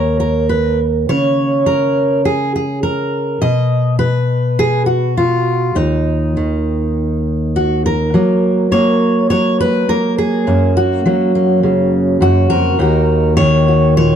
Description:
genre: folk, solo fingerstyle acoustic guitar.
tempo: 103 BPM.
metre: 4/4.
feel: straight.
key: unclear.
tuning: A4 = 440 Hz.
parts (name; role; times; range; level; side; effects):
fingerpicked steel-string acoustic guitar; solo; 0.0-14.2 s; Eb2 to Eb5; -12 LUFS; equal; none.
room: light reverb.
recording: dark, warm production.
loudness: -12 LUFS.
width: side -8 dB against mid.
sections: 0.0-8.1 A section; 8.1-14.2 B section.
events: none.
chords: 0.0 N.C.; 8.1 Gb; 12.8 Ebm.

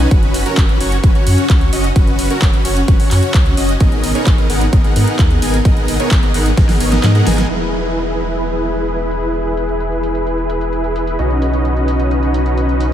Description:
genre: EDM, festival progressive house.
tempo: 130 BPM.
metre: 4/4.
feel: straight.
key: unclear.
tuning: A4 = 439 Hz.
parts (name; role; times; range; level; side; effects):
dense compressed supersaw; riff; 0.0-12.9 s; B3 to G#5; -17 LUFS; equal; sidechain pumping, low-pass filter, ping-pong delay.
saturated sub bass; bass; 0.0-12.9 s; E1 to G#2; -18 LUFS; equal; sidechain pumping.
big-room dance drum kit; drums; 0.0-12.9 s; crash cymbal, handclaps, hi-hat, snare drum; -23 LUFS; equal; overdrive, low-pass filter on snare, studio reverb, low-pass filter on hats, low-pass filter on cymbals.
electronic kick drum; drums; 0.1-6.7 s; none; -13 LUFS; equal; overdrive, studio reverb.
room: light reverb, digital ambience.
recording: none.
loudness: -12 LUFS.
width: side -11 dB against mid.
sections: 0.0-7.5 A section; 7.5-12.9 B section.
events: drop 0.0-7.5; drum fill 6.6-7.5; kick drops out 7.0-7.5; band accent 7.4; filter sweep on drum 7.5-12.9.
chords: 0.1 F#sus4; 3.8 G#madd9; 7.5 E; 11.2 Badd9.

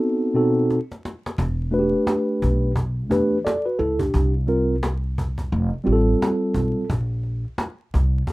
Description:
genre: hip hop, jazz-hop.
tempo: 87 BPM.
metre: 4/4.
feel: swing 61% on 16ths.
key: unclear.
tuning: A4 = 439 Hz.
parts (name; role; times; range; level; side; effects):
mellow tine electric piano; accompaniment; 0.0-6.9 s; B2 to D5; -20 LUFS; equal; medium stereo tremolo.
cajon; drums; 0.7-8.3 s; none; -27 LUFS; equal; none.
upright bass; bass; 1.4-8.2 s; E1 to E2; -22 LUFS; equal; none.
room: light reverb.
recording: rough home demo mix, vinyl crackle.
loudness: -19 LUFS.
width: side -20 dB against mid.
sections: 0.0-8.3 A section.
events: drum fill 0.7-1.4.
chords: 0.0 B7b9; 1.4 Em7; 4.1 C5; 5.5 F; 6.9 Bbsus2.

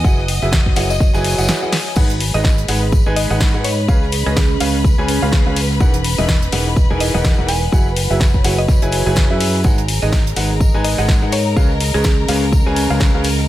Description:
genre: piano house.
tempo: 125 BPM.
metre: 4/4.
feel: swing 58% on 16ths.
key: unclear.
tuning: A4 = 440 Hz.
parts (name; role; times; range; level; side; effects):
mallet-like synth pluck; melody; 0.0-12.6 s; G#4 to G#5; -26 LUFS; equal; chorus, digital delay.
bright studio string section; sustained chords; 0.0-13.5 s; A#4 to D#6; -27 LUFS; left 2 dB; sidechain pumping.
clear grand piano; riff; 0.0-13.2 s; C#3 to G#5; -22 LUFS; right 1 dB; sidechain pumping, digital delay.
fingered electric bass; bass; 0.0-13.5 s; E1 to G#2; -19 LUFS; equal; sidechain pumping.
electronic kick drum; drums; 0.0-13.1 s; none; -15 LUFS; equal; none.
tight funk drum kit; drums; 0.0-13.5 s; hi-hat, snare drum, tambourine; -31 LUFS; left 1 dB; sidechain pumping on hats, high-pass filter on hats, high-pass filter on snare, sidechain pumping on perc, high-pass filter on perc, high-pass filter on room.
warbly tape-like pad; texture; 0.0-13.5 s; C#4 to A#5; -26 LUFS; right 1 dB; chorus, built-in reverb, sidechain pumping.
house drum kit; drums; 0.3-13.4 s; crash cymbal, hi-hat, snare drum; -22 LUFS; left 1 dB; none.
room: studio ambience.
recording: none.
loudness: -13 LUFS.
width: side -14 dB against mid.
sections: 0.0-13.5 A section.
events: break 1.5-2.0; drum fill 1.7.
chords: 0.0 F#9sus4; 2.0 G#m7; 3.9 C#7; 5.8 Emaj9#11; 7.7 F#9sus4; 9.6 G#m7; 11.6 C#7.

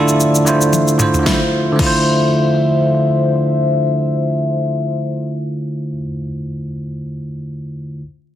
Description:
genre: amapiano.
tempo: 113 BPM.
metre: 4/4.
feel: swing 55% on 16ths.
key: D minor.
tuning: A4 = 440 Hz.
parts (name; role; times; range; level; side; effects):
bell-like tine electric piano; accompaniment; 0.0-8.0 s; D3 to D5; -16 LUFS; right 1 dB; none.
dark brass ensemble; sustained chords; 0.0-5.4 s; D3 to E5; -20 LUFS; left 3 dB; none.
deep house drum kit; drums; 0.1-2.0 s; crash cymbal, kick drum, shaker, snare drum, toms; -19 LUFS; left 1 dB; soft clipping on snare.
room: light reverb.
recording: dense, heavily limited modern master.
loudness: -14 LUFS.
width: side -11 dB against mid.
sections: 0.0-1.3 A section; 1.3-5.5 B section.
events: drum fill 0.7-1.3.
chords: 0.0 Dm9.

